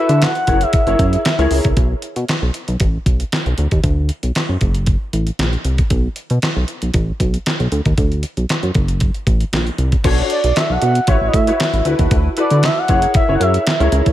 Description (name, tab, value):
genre	early-eighties boogie funk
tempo	116 BPM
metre	4/4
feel	straight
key	unclear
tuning	A4 = 440 Hz
part	expressive synth lead	melody	0.0-1.5, 10.3-13.9 s	D5 to F#5	-19 LUFS	equal	chorus, tape echo
part	clear concert grand piano	accompaniment	0.0-1.6, 10.0-14.0 s	D4 to E5	-20 LUFS	left 2 dB	ensemble chorus
part	chorused synth bass	bass	0.1-14.1 s	F#1 to D3	-16 LUFS	equal	none
part	detuned 8-bit digital drum machine	drums	0.1-14.1 s	crash cymbal, handclaps, hi-hat, kick drum, snare drum	-18 LUFS	equal	none
room	light reverb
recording	none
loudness	-14 LUFS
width	side -13 dB against mid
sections	0.0-1.8 A section; 1.8-10.0 B section; 10.0-14.1 A section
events	none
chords	0.5 F#9; 1.8 N.C.; 2.8 Asus2; 3.6 N.C.; 4.6 F#; 5.9 N.C.; 6.9 Asus2; 7.7 N.C.; 8.8 F#; 10.0 Bm9; 11.1 A69; 11.9 D6; 12.9 F#9